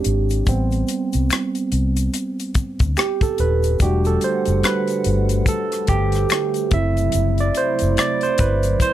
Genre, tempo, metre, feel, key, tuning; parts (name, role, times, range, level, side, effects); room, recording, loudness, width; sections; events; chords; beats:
R&B, neo-soul; 72 BPM; 4/4; swing 60% on 16ths; E minor; A4 = 440 Hz
barky tine electric piano; accompaniment; 0.0-8.9 s; G3 to E5; -21 LUFS; right 3 dB; overdrive, phaser
tight funk drum kit; drums; 0.0-8.9 s; hi-hat, kick drum, rim click; -21 LUFS; left 1 dB
vintage muted fingered electric bass; bass; 0.1-8.7 s; D#1 to D2; -20 LUFS; left 1 dB
tube shaker and finger snaps; percussion; 0.3-8.9 s; -32 LUFS; left 7 dB
hollow soft pad; sustained chords; 3.8-8.9 s; C3 to F#5; -29 LUFS; left 3 dB; ensemble chorus
light reverb; -17 LUFS; side -12 dB against mid
0.0-8.9 A section
tine electric piano solo 0.0-8.9
0.5 Am9; 3.8 Em11 (rootless); 6.7 F#m7b5
| 0.47 1.30 2.14 2.97 | 3.80 4.64 5.47 6.30 | 7.14 7.97 8.80